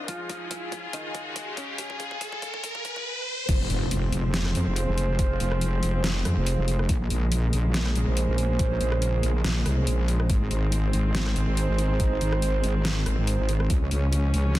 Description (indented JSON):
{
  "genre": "heavy wobble dubstep",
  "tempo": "141 BPM",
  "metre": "4/4",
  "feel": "swing 54% on 16ths, half-time",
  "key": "F minor",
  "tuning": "A4 = 442 Hz",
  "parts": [
    { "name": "dark studio string section", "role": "sustained chords", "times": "0.0-14.6 s", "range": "Db2 to Ab4", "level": "-33 LUFS", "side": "equal", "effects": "sidechain pumping" },
    { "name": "riser and impact", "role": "sound effects", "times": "0.0-5.2 s", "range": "none", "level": "-32 LUFS", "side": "equal", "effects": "none" },
    { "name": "mellow electric guitar", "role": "melody", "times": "0.1-2.1 s", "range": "Db3 to F4", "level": "-39 LUFS", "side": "equal", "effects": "ensemble chorus, dub echo" },
    { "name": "dubstep drum kit", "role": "drums", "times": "0.1-14.6 s", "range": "crash cymbal, hi-hat, rim click, snare drum", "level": "-31 LUFS", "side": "equal", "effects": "overdrive" },
    { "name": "electronic kick drum", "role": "drums", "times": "0.1-13.8 s", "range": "none", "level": "-26 LUFS", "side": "equal", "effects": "overdrive" },
    { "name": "wobble bass", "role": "bass", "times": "3.5-14.6 s", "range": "F1 to F2", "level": "-24 LUFS", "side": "equal", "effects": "chorus, overdrive" },
    { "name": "mellow brass ensemble", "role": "stabs", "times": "4.7-13.7 s", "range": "Db4 to C5", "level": "-33 LUFS", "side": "right 5 dB", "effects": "dub echo" }
  ],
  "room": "little or no reverb",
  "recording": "dense, heavily limited modern master, high-pass filter",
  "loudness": "-23 LUFS",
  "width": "side -15 dB against mid",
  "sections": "0.0-3.5 A section; 3.5-14.6 B section",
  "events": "build-up 0.0-3.5; drum fill 0.0-3.1; riser 0.0-3.5; filter sweep 0.0-3.5; drop 3.5-14.6; impact 3.5-5.2",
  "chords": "0.1 Db; 3.5 Fm; 6.9 Bbm7; 10.3 Ab; 13.7 Db"
}